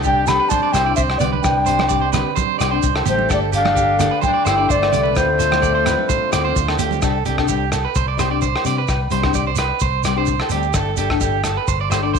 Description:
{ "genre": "highlife guitar band", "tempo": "129 BPM", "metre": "4/4", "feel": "straight", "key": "unclear", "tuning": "A4 = 440 Hz", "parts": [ { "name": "picked steel-string acoustic guitar", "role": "accompaniment", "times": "0.0-12.2 s", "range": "G3 to A4", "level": "-26 LUFS", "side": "left 16 dB", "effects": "none" }, { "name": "combo organ", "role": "sustained chords", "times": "0.0-7.0 s", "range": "A3 to G4", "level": "-31 LUFS", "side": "right 12 dB", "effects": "wide subtle chorus" }, { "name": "electric guitar at the edge of break-up", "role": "arpeggios", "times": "0.0-12.2 s", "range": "G4 to D5", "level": "-22 LUFS", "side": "right 13 dB", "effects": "spring reverb, slapback echo" }, { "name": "fingered electric bass", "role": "bass", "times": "0.0-12.2 s", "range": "G1 to C3", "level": "-23 LUFS", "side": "left 1 dB", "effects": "none" }, { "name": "shekere", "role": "percussion", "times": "0.0-12.2 s", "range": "none", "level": "-27 LUFS", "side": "right 6 dB", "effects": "none" }, { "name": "baroque flute", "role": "melody", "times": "0.1-6.6 s", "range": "C5 to B5", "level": "-18 LUFS", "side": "equal", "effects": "none" }, { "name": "breathy alto saxophone", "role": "second line", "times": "0.1-6.6 s", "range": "A3 to G4", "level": "-26 LUFS", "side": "left 14 dB", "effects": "none" }, { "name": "crunchy breakbeat drum kit", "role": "drums", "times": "0.1-12.2 s", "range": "hi-hat, kick drum, rim click", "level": "-24 LUFS", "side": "left 1 dB", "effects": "none" }, { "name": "agogo bells", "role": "percussion", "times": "0.3-12.0 s", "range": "none", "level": "-28 LUFS", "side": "left 15 dB", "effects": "none" }, { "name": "congas", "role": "percussion", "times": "0.3-7.0 s", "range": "none", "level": "-28 LUFS", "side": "right 13 dB", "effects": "none" } ], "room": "light reverb, studio reverb", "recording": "1960s-style stereo with parts hard left and right", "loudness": "-15 LUFS", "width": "side -6 dB against mid", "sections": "0.0-7.0 A section; 7.0-12.2 B section", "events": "none", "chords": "0.0 Csus2; 3.3 Gsus2; 5.2 Dm7; 7.0 Csus2; 10.7 Gsus2" }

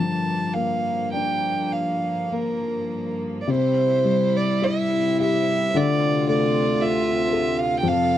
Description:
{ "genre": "celtic folk, Celtic slow air", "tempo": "49-58 BPM", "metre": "4/4", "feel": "rubato", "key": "G dorian", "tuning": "A4 = 440 Hz", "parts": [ { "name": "dark fiddle", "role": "melody", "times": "0.0-8.2 s", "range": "Bb4 to A5", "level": "-24 LUFS", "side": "right 3 dB", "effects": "none" }, { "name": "dark upright piano", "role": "accompaniment", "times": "0.0-8.2 s", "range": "F2 to A4", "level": "-23 LUFS", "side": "left 4 dB", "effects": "none" }, { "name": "clear chamber string section", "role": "sustained chords", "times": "0.0-8.2 s", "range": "D2 to A4", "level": "-28 LUFS", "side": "right 2 dB", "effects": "none" } ], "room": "little or no reverb", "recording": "dry, close 1970s-style studio recording", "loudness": "-20 LUFS", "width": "side -12 dB against mid", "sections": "0.0-3.5 A section; 3.5-8.2 B section", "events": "none", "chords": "0.0 Gm7; 3.5 C; 5.7 Dm7" }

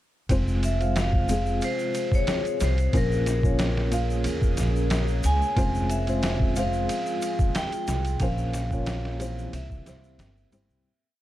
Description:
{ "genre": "trip hop", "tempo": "91 BPM", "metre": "4/4", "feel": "straight", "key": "F harmonic minor", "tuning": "A4 = 440 Hz", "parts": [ { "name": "felt-muted upright piano", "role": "accompaniment", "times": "0.3-10.9 s", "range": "C3 to F5", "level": "-31 LUFS", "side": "left 1 dB", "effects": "tremolo, tape echo" }, { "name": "deep dark ambient pad", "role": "sustained chords", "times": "1.7-10.8 s", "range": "Bb3 to G5", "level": "-36 LUFS", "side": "right 1 dB", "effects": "chorus, built-in reverb" }, { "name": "upright bass", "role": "bass", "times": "0.3-10.8 s", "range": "F1 to E2", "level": "-26 LUFS", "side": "equal", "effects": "none" }, { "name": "trip hop sampler-style drum kit", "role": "drums", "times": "0.3-10.7 s", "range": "kick drum, ride cymbal, snare drum", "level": "-28 LUFS", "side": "equal", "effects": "studio reverb" }, { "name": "tube shaker", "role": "percussion", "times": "0.3-10.8 s", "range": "none", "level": "-44 LUFS", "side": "left 4 dB", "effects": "none" }, { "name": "bowed-like drone", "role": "texture", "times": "2.0-10.8 s", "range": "Ab4", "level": "-42 LUFS", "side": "right 3 dB", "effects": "built-in reverb" }, { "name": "vibraphone with medium hard mallets", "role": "melody", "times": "0.6-10.5 s", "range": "Bb4 to Ab5", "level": "-30 LUFS", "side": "left 1 dB", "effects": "tape echo" } ], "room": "studio reverb", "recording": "dark, warm production", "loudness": "-22 LUFS", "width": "side -14 dB against mid", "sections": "0.3-10.8 groove", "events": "fade-out 7.3-10.8", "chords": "0.3 Fm; 2.9 Bbmadd9; 5.6 Fm; 8.2 Bbmadd9; 9.5 C" }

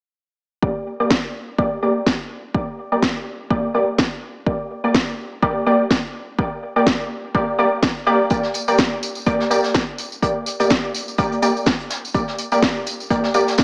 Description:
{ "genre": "bass house", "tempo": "125 BPM", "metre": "4/4", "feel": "swing 56% on 16ths", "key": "G minor", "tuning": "A4 = 440 Hz", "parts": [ { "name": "orchestra-hit-like synth stab", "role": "stabs", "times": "0.6-13.5 s", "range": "Bb3 to D5", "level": "-22 LUFS", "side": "equal", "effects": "built-in reverb, sidechain pumping, tape echo" }, { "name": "electronic kick drum", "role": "drums", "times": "0.6-13.6 s", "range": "none", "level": "-26 LUFS", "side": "equal", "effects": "none" }, { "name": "electronic snare drum", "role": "drums", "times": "1.1-13.6 s", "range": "none", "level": "-22 LUFS", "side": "equal", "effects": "none" }, { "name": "vintage brush drum kit", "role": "drums", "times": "8.3-13.6 s", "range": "hi-hat, snare drum", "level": "-32 LUFS", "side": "equal", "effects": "sidechain pumping on hats, high-pass filter on hats, high-pass filter on snare, high-pass filter on room" }, { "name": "tambourine", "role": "percussion", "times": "8.3-13.6 s", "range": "none", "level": "-32 LUFS", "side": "equal", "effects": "none" } ], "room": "light reverb", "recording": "small speaker sound", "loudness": "-20 LUFS", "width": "mono", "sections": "0.6-13.6 A section", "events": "filter sweep on synth stab 0.6-13.6", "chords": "0.6 Gm" }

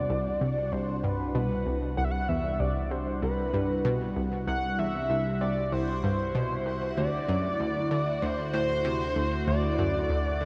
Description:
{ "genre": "ambient, sequencer-driven space music", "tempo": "96 BPM", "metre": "4/4", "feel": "straight", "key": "unclear", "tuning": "A4 = 440 Hz", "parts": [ { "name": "pulse-width lead", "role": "melody", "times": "0.0-10.5 s", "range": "B4 to F#5", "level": "-33 LUFS", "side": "equal", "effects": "chorus, tape echo" }, { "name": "phased analog pad", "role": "sustained chords", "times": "0.0-10.5 s", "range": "C3 to F#4", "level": "-35 LUFS", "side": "equal", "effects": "phaser, chorus" }, { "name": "analog drone", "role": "bass", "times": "0.1-10.5 s", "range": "C2 to D2", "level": "-39 LUFS", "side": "equal", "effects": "chorus" }, { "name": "bubbling stepped-filter texture", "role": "texture", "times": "0.0-10.5 s", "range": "F#4 to F#5", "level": "-45 LUFS", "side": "equal", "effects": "chorus, built-in reverb" }, { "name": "analog pluck", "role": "riff", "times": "0.1-10.5 s", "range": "C2 to D3", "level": "-33 LUFS", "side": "equal", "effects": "chorus, cassette tape, tape echo" } ], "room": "wet lush hall reverb, RT60 2.7 s", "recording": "none", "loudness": "-29 LUFS", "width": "mono", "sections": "0.0-10.5 A section", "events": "none", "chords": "0.0 C; 7.0 D" }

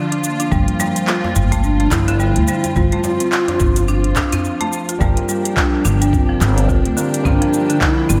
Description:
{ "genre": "organic downtempo", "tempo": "107 BPM", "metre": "4/4", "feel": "swing 58% on 16ths", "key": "G dorian", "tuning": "A4 = 440 Hz", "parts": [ { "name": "dark studio string section", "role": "sustained chords", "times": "0.0-8.2 s", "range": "F3 to G4", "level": "-28 LUFS", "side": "equal", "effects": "sidechain pumping" }, { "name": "buzzing marimba with hard mallets", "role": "arpeggios", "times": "0.1-8.2 s", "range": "D3 to F4", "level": "-24 LUFS", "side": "equal", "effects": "diffuse ambient delay" }, { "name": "afro-pop drum kit", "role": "drums", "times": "0.1-8.2 s", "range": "handclaps, hi-hat, shaker", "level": "-26 LUFS", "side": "equal", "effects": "none" }, { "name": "breathy mellow low ney", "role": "melody", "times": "0.2-8.2 s", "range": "Bb3 to F4", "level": "-24 LUFS", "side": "equal", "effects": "analog delay" }, { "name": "upright bass", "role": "bass", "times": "0.5-8.2 s", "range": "G1 to D2", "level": "-20 LUFS", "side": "equal", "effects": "sidechain pumping" }, { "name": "electronic kick drum", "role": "drums", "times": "0.5-7.9 s", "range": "none", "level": "-22 LUFS", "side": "equal", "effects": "none" }, { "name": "djembe", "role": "percussion", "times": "0.8-4.7 s", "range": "none", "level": "-30 LUFS", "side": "equal", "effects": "none" }, { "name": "overdriven tine electric piano", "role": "accompaniment", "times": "5.0-8.2 s", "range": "G3 to Bb4", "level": "-28 LUFS", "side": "equal", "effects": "medium tremolo, sidechain pumping, diffuse ambient delay" }, { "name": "quartz singing bowl", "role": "texture", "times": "5.0-8.2 s", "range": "F4", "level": "-34 LUFS", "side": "equal", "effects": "none" } ], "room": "moderate lush hall reverb, RT60 1.9 s, small room reverb", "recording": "dreamy mix soaked in reverb", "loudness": "-16 LUFS", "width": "mono", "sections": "0.0-5.0 A section; 5.0-8.2 B section", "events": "break 4.4-5.0", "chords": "0.0 Dm/G; 5.0 Gm7" }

